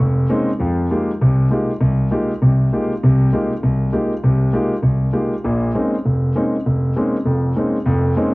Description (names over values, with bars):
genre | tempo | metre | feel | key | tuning
jazz | 198 BPM | 4/4 | swing 60% on 8ths | F minor | A4 = 440 Hz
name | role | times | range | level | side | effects
warm concert grand piano | solo | 0.0-8.3 s | F1 to G4 | -15 LUFS | equal | cassette tape
room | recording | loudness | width
light reverb, small room ambience | home recording on cassette | -15 LUFS | side -23 dB against mid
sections
0.6-8.3 A section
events
none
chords
0.0 Bbm11; 0.6 Fm11; 5.4 Bbm11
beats
0.30 | 0.60 0.90 1.20 1.50 | 1.81 2.11 2.41 2.72 | 3.02 3.32 3.62 3.93 | 4.23 4.53 4.84 5.14 | 5.44 5.75 6.05 6.35 | 6.65 6.96 7.26 7.56 | 7.86 8.17